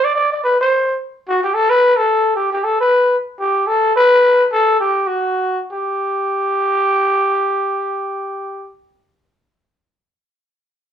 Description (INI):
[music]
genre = jazz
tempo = 216 BPM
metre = 4/4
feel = swing 60% on 8ths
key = G major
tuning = A4 = 440 Hz
[part]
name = growling trumpet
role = solo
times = 0.0-8.7 s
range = F#4 to D5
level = -14 LUFS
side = equal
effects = none
[sound]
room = wet club reverb, RT60 0.7 s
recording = heard from further back in the room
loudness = -14 LUFS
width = side -9 dB against mid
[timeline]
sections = 0.0-3.5 A section; 3.5-5.7 B section; 5.7-7.9 C section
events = none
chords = none